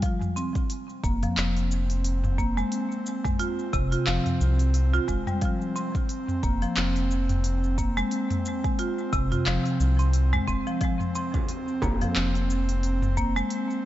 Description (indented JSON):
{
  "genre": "organic downtempo",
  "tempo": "89 BPM",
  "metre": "4/4",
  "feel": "swing 57% on 16ths",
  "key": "F minor",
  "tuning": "A4 = 441 Hz",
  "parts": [
    { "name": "marimba with medium hard mallets", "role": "arpeggios", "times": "0.0-13.5 s", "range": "C3 to F4", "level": "-28 LUFS", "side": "equal", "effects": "digital delay" },
    { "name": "afro-pop drum kit", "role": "drums", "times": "0.0-13.8 s", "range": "handclaps, hi-hat, shaker, toms", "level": "-31 LUFS", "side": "equal", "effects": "low-pass filter on perc, low-pass filter on toms, low-pass filter on hats, low-pass filter on snare" },
    { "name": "electronic kick drum", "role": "drums", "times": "0.0-13.3 s", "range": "none", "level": "-28 LUFS", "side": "equal", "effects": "none" },
    { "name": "airy breathy pad", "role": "sustained chords", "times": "1.3-13.9 s", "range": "C4", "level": "-32 LUFS", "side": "right 2 dB", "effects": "chorus, sidechain pumping" },
    { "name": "round analog bass", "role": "bass", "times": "1.0-13.4 s", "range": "F1 to C2", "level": "-25 LUFS", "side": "equal", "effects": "tube saturation, sidechain pumping" },
    { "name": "frame drum", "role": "percussion", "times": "11.3-12.0 s", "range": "none", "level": "-35 LUFS", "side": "right 2 dB", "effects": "none" }
  ],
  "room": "light reverb, digital ambience",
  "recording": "nothing above 7.7 kHz",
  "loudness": "-23 LUFS",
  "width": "side -14 dB against mid",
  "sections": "0.0-13.9 A section",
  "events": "none",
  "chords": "0.0 F5"
}